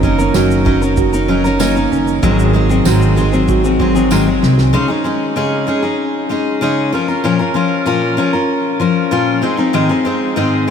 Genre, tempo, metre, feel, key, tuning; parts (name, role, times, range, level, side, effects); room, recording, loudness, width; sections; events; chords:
acoustic pop; 96 BPM; 4/4; straight; Db major; A4 = 440 Hz
picked steel-string acoustic guitar; accompaniment; 0.0-10.7 s; Ab2 to Bb4; -14 LUFS; left 2 dB
nylon-string guitar; arpeggios; 0.0-5.3 s; Eb3 to Gb4; -20 LUFS; right 8 dB; ping-pong delay
upright bass; bass; 0.0-4.7 s; Gb1 to C2; -16 LUFS; right 1 dB
loose indie drum kit; drums; 0.0-4.7 s; kick drum, shaker, snare drum; -22 LUFS; right 1 dB
tambourine; percussion; 0.3-4.3 s; -33 LUFS; right 12 dB
moderate huge ambient reverb, RT60 7.1 s; dreamy mix soaked in reverb; -12 LUFS; side -7 dB against mid
0.0-4.7 A section; 4.7-10.7 B section
drum fill 4.1-4.7
0.0 Ebm7/Gb; 2.2 Ab7; 4.7 Dbsus2; 6.9 Bbm; 9.4 Ab